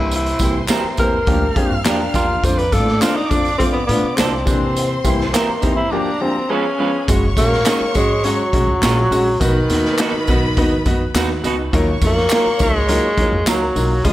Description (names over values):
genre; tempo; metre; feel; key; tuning
uptempo 1960s-style soul; 103 BPM; 4/4; straight; F major, F# major from 7.1 s; A4 = 440 Hz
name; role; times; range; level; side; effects
breathy tenor saxophone; melody; 0.0-14.1 s; D#3 to C5; -20 LUFS; equal; none
rich studio violin section; second line; 0.0-14.1 s; Ab4 to F6; -27 LUFS; equal; none
clear upright piano; accompaniment; 0.0-14.1 s; D2 to A#4; -22 LUFS; left 1 dB; none
upright bass; bass; 0.0-14.1 s; F#1 to C3; -22 LUFS; equal; none
raw garage drum kit; drums; 0.1-14.1 s; hi-hat, kick drum, snare drum; -20 LUFS; equal; none
tambourine and handclaps; percussion; 0.1-14.1 s; none; -27 LUFS; right 1 dB; none
mellow electric guitar; riff; 0.4-7.0 s; Bb3 to F4; -27 LUFS; left 5 dB; none
electric guitar through a small old amp; stabs; 0.7-13.6 s; F3 to C#5; -26 LUFS; right 5 dB; spring reverb, tape echo
room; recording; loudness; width
light reverb, small room ambience; none; -14 LUFS; side -15 dB against mid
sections
0.0-7.1 A section; 7.1-14.1 B section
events
tenor saxophone solo 0.0-7.1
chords
0.0 C7; 1.3 Bb6/D; 2.4 F6; 4.5 C7; 5.9 Bb6/D; 6.5 Db7; 7.1 F#sus2; 9.4 B; 11.7 D#madd9